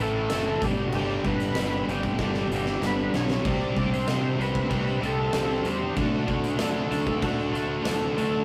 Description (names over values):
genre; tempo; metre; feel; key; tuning
classic rock; 95 BPM; 4/4; straight; unclear; A4 = 438 Hz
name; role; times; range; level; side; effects
overdriven tonewheel organ; melody; 0.0-8.4 s; F#4 to D5; -34 LUFS; equal; chorus vibrato, slow rotary speaker
picked steel-string acoustic guitar; accompaniment; 0.0-8.4 s; G2 to B4; -38 LUFS; equal; none
distorted electric guitar; riff; 0.0-8.4 s; G2 to D4; -31 LUFS; equal; distortion
growling fingered electric bass; bass; 0.0-8.4 s; F#1 to C3; -33 LUFS; equal; overdrive
huge arena drum kit; drums; 0.3-8.0 s; crash cymbal, kick drum, snare drum; -32 LUFS; equal; none
tambourine; percussion; 0.3-8.3 s; none; -50 LUFS; equal; none
room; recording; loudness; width
moderate studio reverb, RT60 0.5 s; rough rehearsal-room recording, warm saturation; -26 LUFS; mono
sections
0.0-8.4 A section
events
drum fill 2.2-3.5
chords
0.0 Aadd9; 0.6 G; 3.5 Csus2; 6.0 D